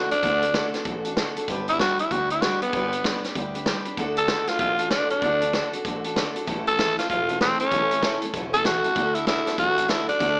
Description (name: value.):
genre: rockabilly.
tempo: 193 BPM.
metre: 4/4.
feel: swing 62% on 8ths.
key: D major.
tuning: A4 = 440 Hz.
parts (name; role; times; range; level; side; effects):
growling tenor saxophone; melody; 0.0-10.4 s; B3 to A4; -25 LUFS; equal; none.
picked steel-string acoustic guitar; accompaniment; 0.0-10.4 s; A2 to B4; -32 LUFS; equal; none.
upright bass; bass; 0.1-10.4 s; E1 to D2; -36 LUFS; equal; none.
vintage drum kit; drums; 0.1-10.3 s; hi-hat, kick drum, snare drum; -30 LUFS; equal; none.
room: light reverb.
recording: small speaker sound.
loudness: -24 LUFS.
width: mono.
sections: 0.0-10.4 A section.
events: none.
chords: 0.0 D; 1.5 G; 4.0 D; 6.5 A; 9.0 D.